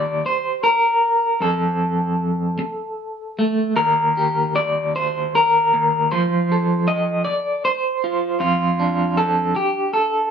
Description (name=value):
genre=folk, solo fingerstyle acoustic guitar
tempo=52 BPM (dotted quarters)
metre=6/8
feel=rubato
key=unclear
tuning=A4 = 438 Hz
part: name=electric guitar through a small old amp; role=solo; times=0.0-10.3 s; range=Eb2 to Eb5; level=-17 LUFS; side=equal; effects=tremolo
room=moderate studio reverb, RT60 0.7 s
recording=band playing live in one room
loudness=-17 LUFS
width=side -7 dB against mid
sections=0.0-10.3 A section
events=none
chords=0.0 Ebmaj7; 1.4 F; 3.8 Eb; 6.1 F; 8.4 Dm/F